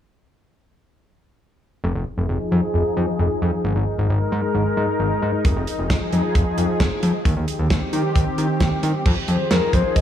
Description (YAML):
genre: synth-pop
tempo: 133 BPM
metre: 4/4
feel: straight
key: F minor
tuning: A4 = 442 Hz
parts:
  - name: lush unison pad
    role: sustained chords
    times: 2.2-10.0 s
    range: Eb3 to Bb4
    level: -23 LUFS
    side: left 1 dB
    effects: chorus, low-pass filter
  - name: fat analog bass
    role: bass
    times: 1.8-9.8 s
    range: F1 to Eb3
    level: -20 LUFS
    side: equal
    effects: none
  - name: damped 70s drum kit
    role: drums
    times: 5.4-10.0 s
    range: crash cymbal, hi-hat, kick drum, snare drum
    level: -21 LUFS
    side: equal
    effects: none
  - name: mellow horn-like synth lead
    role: melody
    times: 9.3-10.0 s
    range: Bb4 to Eb5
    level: -21 LUFS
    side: left 4 dB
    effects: chorus, phaser, analog delay
room: moderate lush hall reverb, RT60 1.7 s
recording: dreamy mix soaked in reverb, small room ambience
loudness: -18 LUFS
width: side -10 dB against mid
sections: 1.8-9.1 A section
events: filter sweep on analog synth pad 1.8-9.1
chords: 1.8 Fm7; 3.6 Absus2; 5.4 Fm7; 7.3 Cm/Eb; 9.1 Fm7